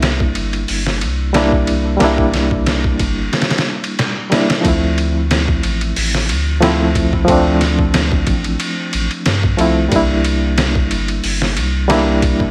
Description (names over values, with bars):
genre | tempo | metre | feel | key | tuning
trip hop | 91 BPM | 4/4 | swing 54% on 16ths | D minor | A4 = 440 Hz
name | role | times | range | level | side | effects
reed electric piano | accompaniment | 0.0-12.5 s | F3 to E4 | -20 LUFS | equal | fast tremolo, tape echo
soft dub sub bass | bass | 0.0-12.5 s | G1 to G2 | -21 LUFS | equal | none
trip hop sampler-style drum kit | drums | 0.0-12.5 s | hi-hat, kick drum, ride cymbal, snare drum | -20 LUFS | equal | none
room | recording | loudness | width
light reverb | vinyl crackle | -16 LUFS | mono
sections
0.0-4.6 A section; 4.6-12.5 B section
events
none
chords
0.0 C7; 4.6 Dm7; 9.9 C7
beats
0.03 0.69 1.35 | 2.00 2.67 3.32 3.98 | 4.64 5.30 5.96 6.62 | 7.28 7.94 8.60 9.26 | 9.92 10.58 11.24 11.89